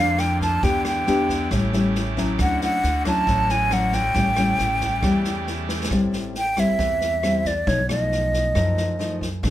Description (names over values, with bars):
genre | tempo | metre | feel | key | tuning
bossa nova | 136 BPM | 4/4 | straight | unclear | A4 = 440 Hz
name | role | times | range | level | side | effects
breathy mellow silver concert flute | melody | 0.0-9.2 s | C#5 to A5 | -22 LUFS | right 1 dB | none
nylon-string guitar | accompaniment | 0.0-9.5 s | F2 to G4 | -24 LUFS | left 2 dB | none
pipe organ, trumpet | sustained chords | 0.0-5.9 s | Bb2 to A4 | -31 LUFS | right 1 dB | none
upright bass | bass | 0.0-9.5 s | A1 to F#2 | -26 LUFS | right 1 dB | none
open jazz drum kit | drums | 0.2-9.5 s | kick drum, rim click, snare drum | -29 LUFS | equal | none
room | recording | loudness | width
light reverb | none | -19 LUFS | side -13 dB against mid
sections
0.0-5.9 A section; 5.9-9.5 B section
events
drum fill 5.7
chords
0.0 Bbmaj7; 0.6 Em7; 1.5 A7; 2.4 Dmaj9; 4.2 A7; 5.9 Am7; 7.7 B7#11